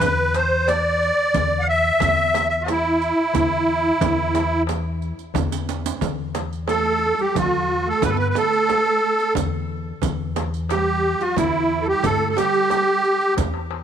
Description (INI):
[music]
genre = Arabic maqam ensemble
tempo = 90 BPM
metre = 3/4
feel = straight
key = E maqam bayati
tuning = A4 = 440 Hz
[part]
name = musette accordion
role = melody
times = 0.0-13.3 s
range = E4 to F#5-50c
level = -19 LUFS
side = right 1 dB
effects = none
[part]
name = upright bass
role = bass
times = 0.0-13.8 s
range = E2 to G2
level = -26 LUFS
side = left 2 dB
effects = none
[part]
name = darbuka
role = percussion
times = 0.0-13.8 s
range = none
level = -31 LUFS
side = left 16 dB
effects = none
[part]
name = frame drum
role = percussion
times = 0.0-13.5 s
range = none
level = -28 LUFS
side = right 8 dB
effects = none
[part]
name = riq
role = percussion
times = 0.0-13.5 s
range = none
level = -33 LUFS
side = right 13 dB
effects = none
[part]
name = dark studio cello section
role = second line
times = 6.7-13.4 s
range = E3 to B3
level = -31 LUFS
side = right 13 dB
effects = none
[part]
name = qanun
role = second line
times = 6.7-13.6 s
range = E4 to B4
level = -30 LUFS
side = right 11 dB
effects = none
[sound]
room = light reverb, studio reverb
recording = 1960s-style stereo with parts hard left and right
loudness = -18 LUFS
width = side -8 dB against mid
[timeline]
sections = 0.0-6.0 A section; 6.0-13.8 B section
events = drum fill 5.4-6.0, 13.4-13.8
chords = none